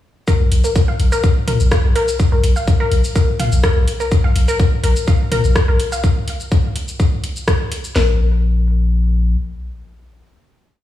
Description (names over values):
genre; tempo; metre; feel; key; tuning
minimal techno; 125 BPM; 4/4; straight; unclear; A4 = 440 Hz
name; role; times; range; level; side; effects
resonant blip pluck; riff; 0.3-8.2 s; Bb4 to F5; -22 LUFS; left 2 dB; chorus, sidechain pumping, tape echo
booming analog drum machine; drums; 0.3-7.9 s; hi-hat, rim click, shaker; -25 LUFS; equal; none
garage drum kit; drums; 0.3-8.1 s; hi-hat, kick drum, snare drum; -14 LUFS; left 1 dB; none
punchy sub bass; bass; 0.4-9.4 s; Bb1 to Bb2; -14 LUFS; left 1 dB; sidechain pumping
room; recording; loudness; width
digital ambience; played on a big sound system in a bare room, stone room reverb, studio ambience; -14 LUFS; side -13 dB against mid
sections
0.3-8.0 drop; 8.0-10.8 final note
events
drop 0.3-8.0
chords
0.3 Bb5; 8.0 N.C.